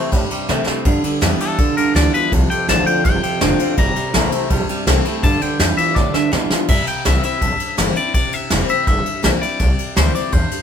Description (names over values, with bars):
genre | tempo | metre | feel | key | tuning
rockabilly | 165 BPM | 4/4 | straight | C mixolydian | A4 = 440 Hz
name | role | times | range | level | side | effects
picked steel-string acoustic guitar | accompaniment | 0.0-10.6 s | F2 to F4 | -24 LUFS | left 6 dB | none
twangy electric guitar | riff | 0.0-6.7 s | F2 to A3 | -20 LUFS | right 4 dB | phaser
upright bass | bass | 0.1-10.5 s | E1 to C3 | -20 LUFS | equal | none
soft brush drum kit | drums | 0.1-10.6 s | crash cymbal, kick drum, ride cymbal, snare drum | -19 LUFS | equal | none
twangy electric guitar | melody | 1.4-10.6 s | A4 to Bb5 | -21 LUFS | left 3 dB | phaser
room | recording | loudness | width
light reverb | band playing live in one room | -14 LUFS | side -8 dB against mid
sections
0.0-6.7 A section; 6.7-10.6 B section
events
clean electric guitar solo 0.0-6.7; drum fill 0.5-0.9, 6.0-6.7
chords
0.0 C7; 0.9 G7; 2.3 F7; 3.8 C7; 5.2 G7; 6.7 C7